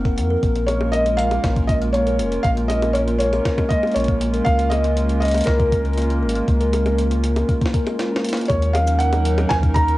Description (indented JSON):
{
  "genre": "IDM",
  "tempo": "119 BPM",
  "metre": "4/4",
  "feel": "straight",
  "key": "Bb minor",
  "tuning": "A4 = 440 Hz",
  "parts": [
    { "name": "felt-muted upright piano", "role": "melody", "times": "0.0-10.0 s", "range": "Bb4 to Bb5", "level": "-22 LUFS", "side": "equal", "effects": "tape echo" },
    { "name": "hollow soft pad", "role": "sustained chords", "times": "0.0-10.0 s", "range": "Gb3 to Bb4", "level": "-26 LUFS", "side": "right 2 dB", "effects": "chorus, sidechain pumping, cassette tape" },
    { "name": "warm sub bass", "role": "bass", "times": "0.0-10.0 s", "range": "F1 to F2", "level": "-21 LUFS", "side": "equal", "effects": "none" },
    { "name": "kalimba", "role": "arpeggios", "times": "0.1-8.4 s", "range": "F3 to Bb4", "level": "-24 LUFS", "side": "left 1 dB", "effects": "cassette tape, analog delay" },
    { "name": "electronic kick drum", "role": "drums", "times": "0.1-9.9 s", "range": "none", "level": "-20 LUFS", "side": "equal", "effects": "small room reverb, cassette tape" },
    { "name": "jungle sampler-style drum kit", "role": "drums", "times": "0.1-10.0 s", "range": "bongos, hi-hat, shaker, snare drum", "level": "-30 LUFS", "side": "left 1 dB", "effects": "small room reverb, cassette tape" }
  ],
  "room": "moderate studio reverb, RT60 0.6 s",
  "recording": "home recording on cassette",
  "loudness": "-17 LUFS",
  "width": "side -17 dB against mid",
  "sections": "0.0-8.5 A section; 8.5-10.0 B section",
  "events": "drum fill 7.5-8.5",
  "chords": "0.4 Bbm7; 4.5 Db6; 8.5 Ebm7"
}